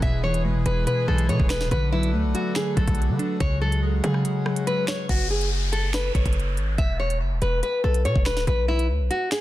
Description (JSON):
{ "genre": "hip hop, drill", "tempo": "142 BPM", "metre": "4/4", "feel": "half-time", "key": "F# minor", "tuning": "A4 = 440 Hz", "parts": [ { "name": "nylon-string guitar", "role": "melody", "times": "0.0-9.4 s", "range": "E4 to E5", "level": "-27 LUFS", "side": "left 1 dB", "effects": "digital delay" }, { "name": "glassy digital keys", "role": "accompaniment", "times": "0.0-5.1 s", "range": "B2 to C#5", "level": "-26 LUFS", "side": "equal", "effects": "chorus" }, { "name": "hand-pumped harmonium", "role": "sustained chords", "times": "0.0-5.1 s", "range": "C#3 to G#4", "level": "-34 LUFS", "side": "left 2 dB", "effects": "none" }, { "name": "hard-hitting 808-style bass", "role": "bass", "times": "0.0-9.1 s", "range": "D1 to D3", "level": "-24 LUFS", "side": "equal", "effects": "none" }, { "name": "drill drum kit", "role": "drums", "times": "0.0-9.4 s", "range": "crash cymbal, finger snaps, hi-hat, kick drum, rim click, snare drum", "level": "-25 LUFS", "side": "equal", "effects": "none" }, { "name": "downlifter", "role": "sound effects", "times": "5.1-8.5 s", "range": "none", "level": "-33 LUFS", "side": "left 2 dB", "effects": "none" } ], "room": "digital ambience", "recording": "dense, heavily limited modern master", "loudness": "-21 LUFS", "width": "side -15 dB against mid", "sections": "0.0-5.1 A section; 5.1-9.4 B section", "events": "kick muted 4.2-5.1", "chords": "0.0 E; 1.7 Bm7; 3.4 C#sus4; 5.1 F#5; 6.8 E5; 8.5 Bm" }